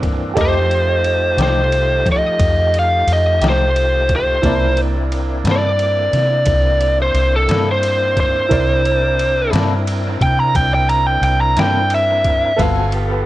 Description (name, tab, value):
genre	slow blues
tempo	59 BPM (dotted quarters)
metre	12/8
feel	straight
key	C mixolydian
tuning	A4 = 440 Hz
part	clear upright piano	accompaniment	0.0-13.3 s	Bb3 to F5	-25 LUFS	right 5 dB	dub echo
part	bright tonewheel organ	sustained chords	0.0-13.3 s	Db3 to Ab5	-25 LUFS	equal	slow rotary speaker, overdrive
part	vintage muted fingered electric bass	bass	0.0-13.3 s	G1 to F3	-18 LUFS	equal	none
part	trip hop sampler-style drum kit	drums	0.0-13.1 s	kick drum, ride cymbal, snare drum	-23 LUFS	equal	dub echo
part	biting lead guitar	melody	0.4-12.6 s	A4 to Bb5	-16 LUFS	equal	overdrive
part	clean electric guitar	accompaniment	0.4-12.8 s	C3 to A4	-23 LUFS	left 5 dB	tremolo
room	little or no reverb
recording	echo-heavy mix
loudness	-13 LUFS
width	side -16 dB against mid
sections	0.0-13.3 A section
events	lead electric guitar solo 0.0-13.3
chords	0.4 F9; 4.4 C9; 12.6 G9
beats	| 0.37 1.39 2.41 3.42 | 4.44 5.46 6.48 7.50 | 8.51 9.53 10.55 11.57 | 12.58